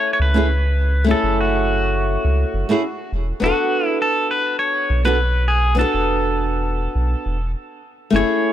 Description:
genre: sunset chillout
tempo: 102 BPM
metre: 4/4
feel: swing 54% on 16ths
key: unclear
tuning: A4 = 441 Hz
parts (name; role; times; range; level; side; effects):
- pedal steel guitar; melody; 0.0-8.5 s; F#4 to C#5; -21 LUFS; equal; tape echo
- flamenco guitar; accompaniment; 0.0-8.5 s; A3 to A4; -21 LUFS; moving between left 3 dB and right 3 dB; auto-pan, tape echo
- round analog bass; bass; 0.2-8.2 s; E1 to C#2; -19 LUFS; equal; none
room: little or no reverb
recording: dry, gritty hardware recording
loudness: -16 LUFS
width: side -11 dB against mid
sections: 0.0-8.1 A section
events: break 7.5-8.1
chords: 0.0 F#m9; 3.1 E7sus4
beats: 0.48 | 1.07 1.66 2.25 2.84 | 3.43 4.01 4.60 5.19 | 5.78 6.37 6.96 7.54 | 8.13

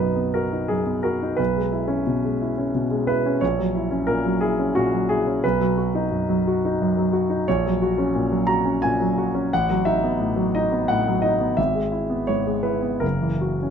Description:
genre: classical, romantic character piece for solo piano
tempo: 88 BPM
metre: 3/4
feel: rubato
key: B major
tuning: A4 = 441 Hz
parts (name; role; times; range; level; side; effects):
- clear concert grand piano; solo; 0.0-13.7 s; F#1 to A#5; -20 LUFS; equal; none
room: light reverb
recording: close, detailed microphones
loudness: -20 LUFS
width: side -7 dB against mid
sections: 0.0-13.7 A section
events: none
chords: 0.0 B; 1.4 C#m7/B; 3.4 F#7/A#; 5.4 B; 7.5 F#/A#; 9.5 B7/A; 11.6 E/G#; 13.0 F#7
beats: 0.69 | 1.39 2.08 2.76 | 3.42 4.08 4.76 | 5.44 6.11 6.79 | 7.46 8.14 8.82 | 9.51 10.19 10.88 | 11.58 12.28 13.03

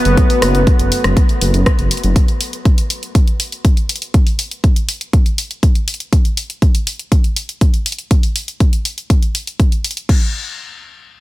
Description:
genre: melodic techno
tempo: 121 BPM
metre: 4/4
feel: straight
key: F# minor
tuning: A4 = 440 Hz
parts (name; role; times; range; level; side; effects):
- lush unison pad; sustained chords; 0.0-2.1 s; F#3 to B3; -19 LUFS; equal; chorus, sidechain pumping
- dark detuned saw bass; bass; 0.1-2.1 s; F#1; -16 LUFS; equal; sidechain pumping
- house drum kit; drums; 0.1-10.2 s; crash cymbal, hi-hat, rim click; -21 LUFS; left 1 dB; small room ambience, sidechain pumping on hats, sidechain pumping on cymbals
- electronic kick drum; drums; 0.2-10.2 s; none; -12 LUFS; equal; small room ambience
room: light reverb, digital ambience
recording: none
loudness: -13 LUFS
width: side -18 dB against mid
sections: 0.0-10.1 A section; 10.1-11.2 B section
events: none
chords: 0.0 F#m; 10.1 N.C.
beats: | 0.17 0.67 1.17 1.66 | 2.16 2.65 3.15 3.65 | 4.14 4.64 5.13 5.63 | 6.12 6.62 7.12 7.61 | 8.11 8.60 9.10 9.60 | 10.09

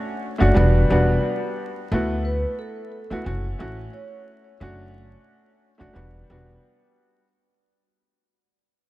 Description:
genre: hip hop, boom-bap hip-hop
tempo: 89 BPM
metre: 4/4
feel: swing 55% on 16ths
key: E dorian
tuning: A4 = 440 Hz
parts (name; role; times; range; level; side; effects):
- dark upright piano; accompaniment; 0.0-7.2 s; G3 to F#4; -24 LUFS; equal; cassette tape, high-pass filter, low-pass filter
- upright bass; bass; 0.4-6.6 s; E1 to D2; -21 LUFS; equal; none
- vibraphone with soft mallets; melody; 2.2-4.2 s; A4 to C#5; -36 LUFS; right 1 dB; high-pass filter, low-pass filter, ping-pong delay
room: light reverb, small room ambience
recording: vinyl crackle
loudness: -19 LUFS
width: side -17 dB against mid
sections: 0.0-7.3 A section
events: fade-out 0.0-7.3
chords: 0.0 Dmaj7; 0.6 Em7; 1.9 D6; 3.3 F#m7; 4.6 Dmaj7/F#; 6.0 Em7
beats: 0.56 1.24 | 1.91 2.58 3.26 3.93 | 4.61 5.28 5.96 6.63

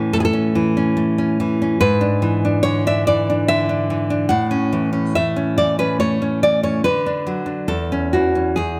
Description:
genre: romantic piece for solo classical guitar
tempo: 71 BPM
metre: 3/4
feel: rubato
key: A major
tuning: A4 = 440 Hz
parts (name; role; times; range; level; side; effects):
- nylon-string guitar; solo; 0.0-8.8 s; E2 to F#5; -18 LUFS; equal; none
room: moderate scoring stage reverb, RT60 1.6 s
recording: none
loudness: -19 LUFS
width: mono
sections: 0.0-8.8 A section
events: none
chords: 0.0 A; 1.8 E7/G#; 4.3 A; 6.9 D; 7.7 A/E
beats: 0.09 0.94 | 1.78 2.63 3.46 | 4.29 5.15 6.00 | 6.86 7.71 8.59

